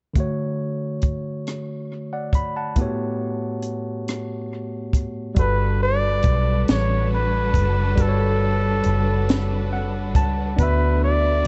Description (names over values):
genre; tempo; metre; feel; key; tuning
slow six-eight R&B; 46 BPM (dotted quarters); 6/8; straight; unclear; A4 = 440 Hz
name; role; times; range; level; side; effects
overdriven tine electric piano; accompaniment; 0.1-11.5 s; A2 to B5; -29 LUFS; equal; none
compact cocktail drum kit; drums; 0.2-11.5 s; hi-hat, kick drum, rim click, snare drum; -24 LUFS; equal; none
warm flugelhorn; melody; 5.4-11.5 s; A4 to D5; -26 LUFS; equal; dub echo
warm studio string section; sustained chords; 5.4-11.5 s; G3 to B4; -33 LUFS; equal; none
vintage muted fingered electric bass; bass; 5.4-11.4 s; F#1 to D2; -24 LUFS; equal; none
room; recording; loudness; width
light reverb, small room ambience; echo-heavy mix, nothing above 8.0 kHz; -22 LUFS; mono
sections
0.2-5.4 A section; 5.4-11.5 B section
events
tine electric piano fill 9.3-10.6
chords
0.2 Dmaj7; 2.8 A13; 5.4 Gmaj9; 10.6 D69